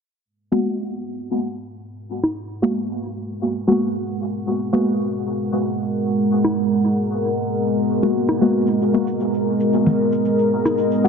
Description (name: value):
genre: dub techno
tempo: 114 BPM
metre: 4/4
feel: straight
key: G# minor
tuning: A4 = 440 Hz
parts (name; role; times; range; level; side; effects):
- deep dark ambient pad; sustained chords; 2.3-11.1 s; G#3 to F#5; -20 LUFS; equal; chorus, built-in reverb
- deep mellow chord stab; stabs; 0.5-11.1 s; G#3 to F#4; -21 LUFS; left 1 dB; chorus, phaser, dub echo
- electronic bongos and toms; percussion; 2.2-2.3, 6.4-10.8 s; none; -24 LUFS; equal; dub echo
- tube shaker; percussion; 8.7-11.0 s; none; -56 LUFS; right 3 dB; none
room: wet lush hall reverb, RT60 2.1 s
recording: dense, heavily limited modern master, low-pass filter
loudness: -18 LUFS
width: side -6 dB against mid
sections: 0.3-11.1 A section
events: none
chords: 0.3 G#m9